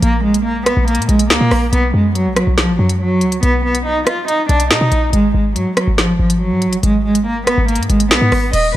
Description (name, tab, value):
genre	hip hop, drill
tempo	141 BPM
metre	4/4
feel	half-time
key	unclear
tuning	A4 = 439 Hz
part	rich cello	melody	0.0-8.7 s	F3 to Eb5	-15 LUFS	right 1 dB	tape echo
part	short 808-style bass	bass	0.0-8.7 s	Eb1 to B2	-16 LUFS	equal	none
part	drill drum kit	drums	0.0-8.6 s	crash cymbal, hi-hat, rim click, snare drum	-17 LUFS	equal	none
room	light reverb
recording	none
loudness	-12 LUFS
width	side -14 dB against mid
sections	0.0-8.5 A section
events	none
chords	0.0 N.C.; 1.7 B; 5.1 N.C.